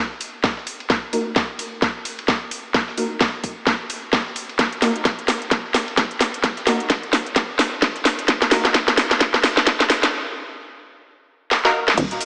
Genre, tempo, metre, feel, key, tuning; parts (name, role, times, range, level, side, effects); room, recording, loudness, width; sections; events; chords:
bass house; 130 BPM; 4/4; swing 59% on 16ths; Eb minor; A4 = 437 Hz
dusty soul sampler-style drum kit; drums; 0.2-12.3 s; ride cymbal, snare drum; -35 LUFS; equal
garage drum kit; drums; 0.2-12.3 s; cabasa, crash cymbal, hi-hat, snare drum; -21 LUFS; equal; studio reverb
electronic kick drum; drums; 0.4-12.1 s; -28 LUFS; equal; studio reverb
orchestra-hit-like synth stab; stabs; 1.1-8.6, 11.6-11.7 s; Bb3 to Bb4; -27 LUFS; equal; built-in reverb, sidechain pumping, dub echo
hollow knocking FM bass; bass; 12.0-12.2 s; Eb1; -25 LUFS; equal; tube saturation, sidechain pumping
wet lush hall reverb, RT60 2.3 s; high-pass filter, small speaker sound; -20 LUFS; mono
0.0-12.0 A section
build-up 0.0-12.0; drum fill 0.0-10.1, 11.5-12.0; filter sweep on synth stab 0.0-12.0; break 10.1-12.0
0.0 Ebm